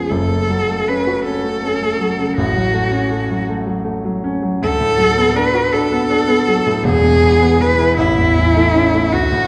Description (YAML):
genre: classical, romantic duo for cello and grand piano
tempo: 53 BPM (dotted quarters)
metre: 6/8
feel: rubato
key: F# minor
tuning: A4 = 440 Hz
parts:
  - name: rich cello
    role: melody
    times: 0.0-9.5 s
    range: E4 to B4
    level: -18 LUFS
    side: equal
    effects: none
  - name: clear grand piano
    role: accompaniment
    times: 0.0-9.5 s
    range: E1 to F#4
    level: -19 LUFS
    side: equal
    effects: none
room: wet recital hall reverb, RT60 1.8 s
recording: heard from further back in the room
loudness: -16 LUFS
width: mono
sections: 0.0-9.5 A section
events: none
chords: 0.1 F#m; 2.4 F#m/A; 4.6 Bm7/D; 6.9 E; 8.0 A